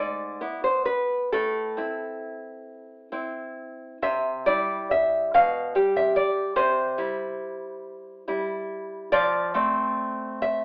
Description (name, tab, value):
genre	romantic piece for solo classical guitar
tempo	46 BPM (dotted quarters)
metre	6/8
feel	uneven beats, rubato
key	A minor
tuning	A4 = 440 Hz
part	nylon-string guitar	solo	0.0-10.6 s	G#2 to F5	-26 LUFS	equal	none
room	moderate studio reverb, RT60 0.8 s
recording	band playing live in one room, telephone sound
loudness	-25 LUFS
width	mono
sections	0.0-10.6 A section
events	none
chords	0.0 E/G#; 1.3 Am; 4.0 C; 5.3 G/B; 6.6 C; 9.1 F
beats	| 1.32 2.68 | 4.01 5.34 | 6.58 7.84 | 9.13 10.43